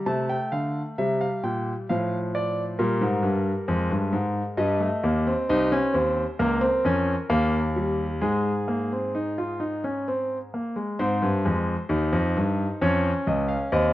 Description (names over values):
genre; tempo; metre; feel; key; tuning
classical, baroque-style 3-part fugue for grand piano; 66 BPM; 3/4; straight; C minor, Ab major from 5.5 s; A4 = 438 Hz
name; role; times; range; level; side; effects
warm grand piano; solo; 0.0-13.9 s; C2 to A5; -22 LUFS; equal; none
room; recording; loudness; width
moderate stone room reverb, RT60 1.5 s; worn, warbling old tape, cassette tape, warbly pitch drift; -22 LUFS; side -15 dB against mid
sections
0.1-11.0 A section; 11.0-13.9 B section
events
none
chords
0.1 C7(no3); 1.9 F/A; 2.8 Bb5; 4.6 Eb/G; 5.5 Cm; 6.4 Bbm/Db; 7.3 Eb; 8.2 Ab; 12.8 Db/F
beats
| 0.07 0.98 1.88 | 2.79 3.69 4.58 | 5.49 6.39 7.30 | 8.23 9.15 10.08 | 11.00 11.91 12.82 | 13.73